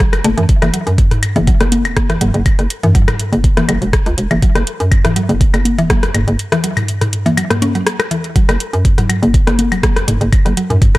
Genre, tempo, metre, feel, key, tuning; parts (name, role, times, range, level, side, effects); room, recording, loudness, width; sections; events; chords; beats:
minimal techno; 122 BPM; 4/4; swing 53% on 16ths; A4 = 441 Hz
mallet-like synth pluck; riff; 0.0-10.6 s; E3 to C#4; -19 LUFS; equal; chorus, sidechain pumping, tape echo
hollow knocking FM bass; bass; 0.0-11.0 s; E1 to F#2; -17 LUFS; equal; tube saturation, sidechain pumping
electronic kick drum; drums; 0.0-10.9 s; -12 LUFS; equal
garage drum kit; drums; 0.0-11.0 s; hi-hat, rim click; -22 LUFS; equal
booming analog drum machine; percussion; 0.1-11.0 s; congas, rim click, toms, woodblock; -17 LUFS; left 1 dB; dub echo
little or no reverb; -11 LUFS; side -18 dB against mid
0.0-11.0 A section
break 6.4-8.4
0.00 | 0.49 0.98 1.47 1.97 | 2.46 2.95 3.44 3.93 | 4.42 4.92 5.41 5.90 | 6.39 6.88 7.38 7.87 | 8.36 8.85 9.34 9.83 | 10.33 10.82